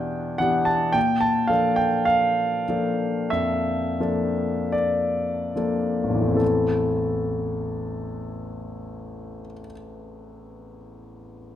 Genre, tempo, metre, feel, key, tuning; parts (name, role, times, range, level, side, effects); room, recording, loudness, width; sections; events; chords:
classical, impressionist solo piano; 35-56 BPM; 4/4; rubato; A4 = 440 Hz
warm concert grand piano; solo; 0.0-11.6 s; A1 to A5; -22 LUFS; left 1 dB
wet recital hall reverb, RT60 1.5 s; -21 LUFS; side -11 dB against mid
0.0-6.4 A section; 6.4-11.6 B section
slowing down 0.0-6.4
0.0 Em7; 0.9 Bbmaj7; 6.4 Am